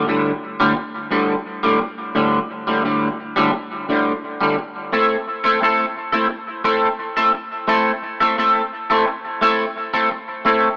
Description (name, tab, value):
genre	rock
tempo	87 BPM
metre	4/4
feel	straight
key	unclear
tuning	A4 = 443 Hz
part	twangy electric guitar	solo	0.0-10.7 s	D2 to A4	-19 LUFS	equal	rotary speaker, analog delay
room	moderate echo chamber reverb, RT60 1.9 s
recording	small speaker sound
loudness	-19 LUFS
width	mono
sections	0.0-10.8 A section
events	none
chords	0.0 Dsus4; 4.9 Am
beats	0.08 0.77 1.47 | 2.16 2.85 3.54 4.24 | 4.93 5.62 6.31 7.00 | 7.70 8.39 9.08 9.77 | 10.46